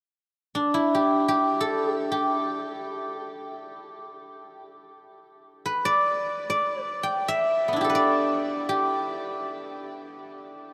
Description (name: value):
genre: chinese traditional, Chinese solo plucked strings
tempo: free time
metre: none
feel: none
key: G gong mode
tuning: A4 = 439 Hz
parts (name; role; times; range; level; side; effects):
- guzheng; solo; 0.5-10.7 s; B3 to G5; -26 LUFS; equal; none
room: wet huge ambient reverb, RT60 8.0 s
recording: in a vast, echoing space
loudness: -25 LUFS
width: mono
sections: 0.0-10.7 A section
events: none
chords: none